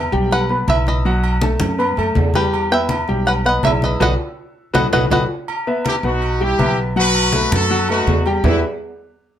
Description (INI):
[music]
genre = latin, salsa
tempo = 162 BPM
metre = 4/4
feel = straight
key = E harmonic minor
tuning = A4 = 440 Hz
[part]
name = bluegrass banjo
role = melody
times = 0.0-5.2 s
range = G4 to G5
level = -19 LUFS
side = right 1 dB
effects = none
[part]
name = clear concert grand piano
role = accompaniment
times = 0.0-8.6 s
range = E3 to E6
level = -20 LUFS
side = left 2 dB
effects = none
[part]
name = upright bass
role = bass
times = 0.0-8.6 s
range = B1 to F#2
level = -20 LUFS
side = equal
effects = none
[part]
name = congas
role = percussion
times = 0.1-8.5 s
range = none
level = -23 LUFS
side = left 2 dB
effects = none
[part]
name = agogo bells and timbales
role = percussion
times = 0.3-8.5 s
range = none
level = -24 LUFS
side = right 3 dB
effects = none
[part]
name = clear horn section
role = melody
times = 5.9-8.6 s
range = D#4 to B4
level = -19 LUFS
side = equal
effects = none
[sound]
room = moderate studio reverb, RT60 0.6 s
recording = none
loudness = -15 LUFS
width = side -10 dB against mid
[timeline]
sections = 0.0-5.5 A section; 5.5-8.4 B section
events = band accent 4.0-5.5; drum fill 4.9-5.5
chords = 0.0 Emadd9; 1.1 B7; 2.5 Em; 4.0 B7; 5.5 Emadd9; 7.0 B7; 8.4 Emadd9